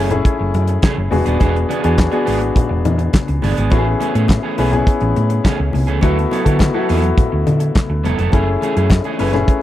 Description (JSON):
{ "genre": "disco", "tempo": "104 BPM", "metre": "4/4", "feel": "straight", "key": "F# minor", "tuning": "A4 = 442 Hz", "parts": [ { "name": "clear grand piano", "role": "accompaniment", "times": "0.0-9.6 s", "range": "A3 to B4", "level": "-19 LUFS", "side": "left 4 dB", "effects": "tube saturation" }, { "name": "electric guitar at the edge of break-up", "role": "accompaniment", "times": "0.0-9.5 s", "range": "E3 to A4", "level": "-23 LUFS", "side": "right 6 dB", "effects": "spring reverb" }, { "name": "hollow-body short-scale fingered electric bass", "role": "bass", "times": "0.0-9.4 s", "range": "D#1 to D3", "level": "-17 LUFS", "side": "equal", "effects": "none" }, { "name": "damped 70s drum kit", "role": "drums", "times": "0.1-9.6 s", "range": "handclaps, hi-hat, kick drum, snare drum", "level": "-15 LUFS", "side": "equal", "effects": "none" }, { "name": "congas", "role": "percussion", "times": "0.1-9.5 s", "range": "none", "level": "-26 LUFS", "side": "left 5 dB", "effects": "none" } ], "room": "small room ambience", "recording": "dry, close 1970s-style studio recording", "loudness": "-13 LUFS", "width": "side -13 dB against mid", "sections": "0.0-9.6 A section", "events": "none", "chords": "0.0 F#m9; 1.1 E7; 3.7 Amaj7; 6.0 D69; 8.3 F#m9" }